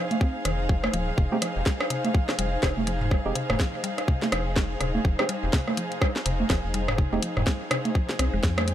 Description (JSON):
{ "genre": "minimal techno", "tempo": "124 BPM", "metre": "4/4", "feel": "swing 59% on 16ths", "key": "F minor", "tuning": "A4 = 440 Hz", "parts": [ { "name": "mallet-like synth pluck", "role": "riff", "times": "0.0-8.7 s", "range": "C3 to C4", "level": "-34 LUFS", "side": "left 1 dB", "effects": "chorus, sidechain pumping, tape echo" }, { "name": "warm studio string section", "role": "texture", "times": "0.0-8.7 s", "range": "Eb4 to G5", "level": "-32 LUFS", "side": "left 1 dB", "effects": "sidechain pumping" }, { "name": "garage drum kit", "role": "drums", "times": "0.1-8.7 s", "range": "hi-hat, snare drum", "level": "-31 LUFS", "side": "left 1 dB", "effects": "none" }, { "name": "booming analog drum machine", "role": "percussion", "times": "0.1-8.7 s", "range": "congas, rim click, toms", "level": "-28 LUFS", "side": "right 2 dB", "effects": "overdrive, digital delay" }, { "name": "electronic kick drum", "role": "drums", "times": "0.2-8.5 s", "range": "none", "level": "-24 LUFS", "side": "equal", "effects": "none" }, { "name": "rubbery square bass", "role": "bass", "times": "0.5-8.7 s", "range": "Eb1 to F2", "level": "-29 LUFS", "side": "equal", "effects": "sidechain pumping" }, { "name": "percussive organ stab", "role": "stabs", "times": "1.3-7.2 s", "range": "Ab3 to G4", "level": "-34 LUFS", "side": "right 3 dB", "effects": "chorus, digital delay" } ], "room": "light reverb, digital ambience", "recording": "none", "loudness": "-23 LUFS", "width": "side -11 dB against mid", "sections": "0.0-8.7 A section", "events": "none", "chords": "0.0 Fm7" }